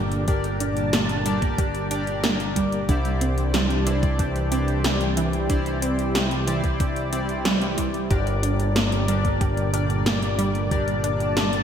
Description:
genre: synthwave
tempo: 92 BPM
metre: 4/4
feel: straight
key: G minor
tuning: A4 = 440 Hz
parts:
  - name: lush unison pad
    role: sustained chords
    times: 0.0-11.6 s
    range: Bb2 to A5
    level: -27 LUFS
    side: right 1 dB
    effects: chorus, sidechain pumping
  - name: wide unison pluck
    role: arpeggios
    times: 0.0-11.6 s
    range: E3 to G4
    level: -29 LUFS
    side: right 3 dB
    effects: digital delay
  - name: chorused polysynth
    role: stabs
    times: 0.0-11.6 s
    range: D4 to D5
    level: -29 LUFS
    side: left 3 dB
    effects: digital delay
  - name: picked electric bass with an envelope filter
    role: bass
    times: 0.0-11.6 s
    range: G1 to C2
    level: -26 LUFS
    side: equal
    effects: none
  - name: 80s electronic pad drums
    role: drums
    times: 0.1-11.6 s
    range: hi-hat, snare drum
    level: -27 LUFS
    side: equal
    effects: gated reverb
  - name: electronic kick drum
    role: drums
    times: 0.3-10.8 s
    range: none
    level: -24 LUFS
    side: equal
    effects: overdrive
room: moderate lush hall reverb, RT60 2.4 s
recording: bright 1980s-style digital production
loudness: -20 LUFS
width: side -8 dB against mid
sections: 0.0-11.6 A section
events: none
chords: 0.0 Gm; 2.9 Cadd9; 8.1 Gm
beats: | 0.28 0.93 1.58 2.24 | 2.89 3.54 4.19 4.84 | 5.50 6.15 6.80 7.45 | 8.11 8.76 9.41 10.06 | 10.71 11.37

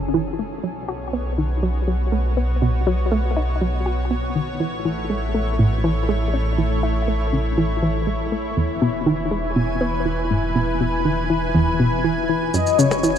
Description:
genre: ambient, sequencer-driven space music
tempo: 121 BPM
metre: 4/4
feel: straight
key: unclear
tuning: A4 = 441 Hz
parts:
  - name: lush unison pad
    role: sustained chords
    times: 0.0-13.2 s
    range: A2 to G#5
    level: -25 LUFS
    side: equal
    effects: chorus, shimmer reverb
  - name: warm sub bass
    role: bass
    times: 0.0-13.2 s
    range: E1 to B1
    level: -24 LUFS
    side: equal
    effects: none
  - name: analog pluck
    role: riff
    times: 0.1-13.1 s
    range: E2 to F#4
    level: -22 LUFS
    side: equal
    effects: chorus, shimmer reverb, ping-pong delay
  - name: mellow horn-like synth lead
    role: melody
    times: 12.5-13.2 s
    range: C#5 to D#5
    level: -20 LUFS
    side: left 7 dB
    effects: lush chorus
  - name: shaker and percussion blips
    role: percussion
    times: 12.5-13.2 s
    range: none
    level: -26 LUFS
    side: left 3 dB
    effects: ping-pong delay
room: moderate concert hall reverb, RT60 2.2 s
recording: none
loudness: -19 LUFS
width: side -9 dB against mid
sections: 0.0-13.2 A section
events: fade-in on analog synth pad 0.0-13.2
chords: 0.0 F#madd9; 0.6 Bsus2; 4.6 A; 8.6 E; 12.5 F#sus2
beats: 0.14 | 0.64 1.13 1.63 2.12 | 2.62 3.12 3.61 4.11 | 4.61 5.10 5.60 6.09 | 6.59 7.08 7.58 8.08 | 8.57 9.07 9.56 10.06 | 10.55 11.05 11.55 12.04 | 12.54 13.03

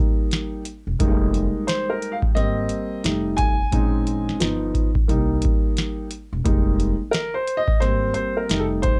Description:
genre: hip hop, jazz-hop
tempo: 88 BPM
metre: 4/4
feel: swing 61% on 16ths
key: F minor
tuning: A4 = 440 Hz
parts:
  - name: warm upright piano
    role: accompaniment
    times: 0.0-9.0 s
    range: F3 to Ab5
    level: -26 LUFS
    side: equal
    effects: none
  - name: booming analog drum machine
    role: drums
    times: 0.3-9.0 s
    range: hi-hat, kick drum, snare drum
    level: -24 LUFS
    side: equal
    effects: vintage 12-bit sampler grit
  - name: upright bass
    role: bass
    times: 0.9-9.0 s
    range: E1 to C2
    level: -28 LUFS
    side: equal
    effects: none
room: light reverb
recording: dark, warm production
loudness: -22 LUFS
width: mono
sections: 0.0-9.0 A section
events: upright piano solo 0.0-9.0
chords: 0.0 Cm7 (rootless); 1.0 Fm11; 2.4 Abmaj7; 3.0 F7; 3.7 Bbm11; 4.4 G7b13; 5.1 Cm7; 6.5 Fm11; 7.8 Abmaj7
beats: 0.32 | 1.00 1.68 2.36 3.04 | 3.73 4.41 5.09 5.77 | 6.45 7.13 7.82 8.50

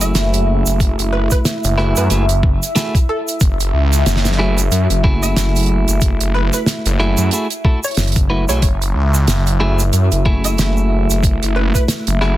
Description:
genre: glitch hop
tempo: 92 BPM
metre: 4/4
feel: swing 58% on 16ths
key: F# minor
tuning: A4 = 440 Hz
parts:
  - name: woody wave-folded pluck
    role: melody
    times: 0.0-12.3 s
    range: A4 to E5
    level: -25 LUFS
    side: right 1 dB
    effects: ensemble chorus, cassette tape, dub echo
  - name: clean electric guitar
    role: stabs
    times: 0.0-12.4 s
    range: A3 to B4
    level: -21 LUFS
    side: equal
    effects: sidechain pumping, dub echo
  - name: phased detuned saw bass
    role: bass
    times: 0.0-12.4 s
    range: F#1 to F#2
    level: -15 LUFS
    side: equal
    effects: phaser, tube saturation
  - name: damped 70s drum kit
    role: drums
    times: 0.0-12.4 s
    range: hi-hat, rim click, snare drum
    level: -20 LUFS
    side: right 2 dB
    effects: none
  - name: egg shaker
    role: percussion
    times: 0.0-12.2 s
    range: none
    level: -26 LUFS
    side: right 3 dB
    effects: none
  - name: deep dark ambient pad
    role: texture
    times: 0.0-12.4 s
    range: E5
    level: -25 LUFS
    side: equal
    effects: chorus, built-in reverb, sidechain pumping
  - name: electronic kick drum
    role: drums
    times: 0.8-11.9 s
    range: none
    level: -14 LUFS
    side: equal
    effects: none
room: light reverb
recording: dense, heavily limited modern master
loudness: -13 LUFS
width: side -15 dB against mid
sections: 0.0-12.4 A section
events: none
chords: 0.0 F#m9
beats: 0.15 | 0.80 1.45 2.11 2.76 | 3.41 4.06 4.71 5.37 | 6.02 6.67 7.32 7.97 | 8.63 9.28 9.93 10.58 | 11.24 11.89

